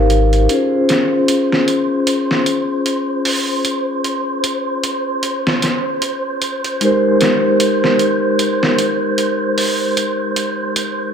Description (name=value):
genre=trip hop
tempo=76 BPM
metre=4/4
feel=swing 58% on 16ths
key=unclear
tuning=A4 = 440 Hz
part: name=vibraphone with soft mallets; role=accompaniment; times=0.0-11.1 s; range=Ab3 to F5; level=-16 LUFS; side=left 1 dB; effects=tremolo, vintage 12-bit sampler grit, tape echo
part: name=round analog bass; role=bass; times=0.0-0.5 s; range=Ab1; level=-14 LUFS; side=equal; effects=none
part: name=trip hop sampler-style drum kit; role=drums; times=0.1-11.0 s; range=hi-hat, snare drum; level=-20 LUFS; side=right 1 dB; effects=high-pass filter on snare, high-pass filter on hats, high-pass filter on kick, high-pass filter on room
part: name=wind-like tuned noise texture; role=texture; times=1.1-11.1 s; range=C5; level=-22 LUFS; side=right 2 dB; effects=built-in reverb
room=moderate plate reverb, RT60 2.6 s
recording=none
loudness=-14 LUFS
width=side -7 dB against mid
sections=0.5-11.1 A section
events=break 0.0-0.5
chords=0.5 Dbmaj7; 6.8 Abmaj7